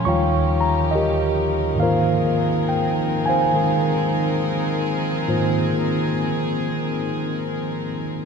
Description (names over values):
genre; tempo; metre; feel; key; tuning
jazz ballad; 69 BPM; 4/4; swing 66% on 8ths; Ab major; A4 = 440 Hz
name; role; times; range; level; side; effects
mellow tine electric piano; accompaniment; 0.0-8.2 s; Eb2 to Db6; -19 LUFS; right 1 dB; slow stereo tremolo
warm chamber string section; sustained chords; 0.0-8.2 s; F3 to Bb4; -26 LUFS; left 4 dB; none
room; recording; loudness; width
wet church reverb, RT60 3.8 s; recorded in a church or concert hall; -18 LUFS; side -6 dB against mid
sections
0.0-8.2 A section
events
none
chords
0.0 Eb9; 1.8 Ab69